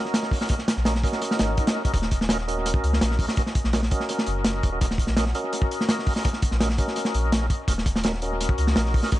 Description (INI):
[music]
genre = drum and bass, jungle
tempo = 167 BPM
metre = 4/4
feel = straight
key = Eb minor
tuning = A4 = 441 Hz
[part]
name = tonewheel organ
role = stabs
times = 0.0-9.2 s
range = Db4 to Eb5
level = -28 LUFS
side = equal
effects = overdrive, chorus vibrato, slow rotary speaker, low-pass filter, dub echo
[part]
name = crunchy breakbeat drum kit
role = drums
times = 0.1-9.2 s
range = hi-hat, kick drum, snare drum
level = -23 LUFS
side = equal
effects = dub echo
[part]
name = soft dub sub bass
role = bass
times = 0.8-9.0 s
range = Eb1 to Db2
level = -25 LUFS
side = equal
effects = tube saturation
[part]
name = swell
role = sound effects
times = 1.5-1.9 s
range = none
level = -38 LUFS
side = left 2 dB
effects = none
[sound]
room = light reverb, small room reverb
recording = echo-heavy mix, nothing above 10.7 kHz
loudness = -21 LUFS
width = side -15 dB against mid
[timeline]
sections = 0.0-9.2 A section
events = swell 1.5-1.9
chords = 0.0 Ebm7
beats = 0.14 | 0.50 0.86 1.22 1.58 | 1.94 2.29 2.65 3.01 | 3.37 3.73 4.09 4.45 | 4.81 5.17 5.53 5.89 | 6.25 6.61 6.97 7.33 | 7.68 8.04 8.40 8.76 | 9.12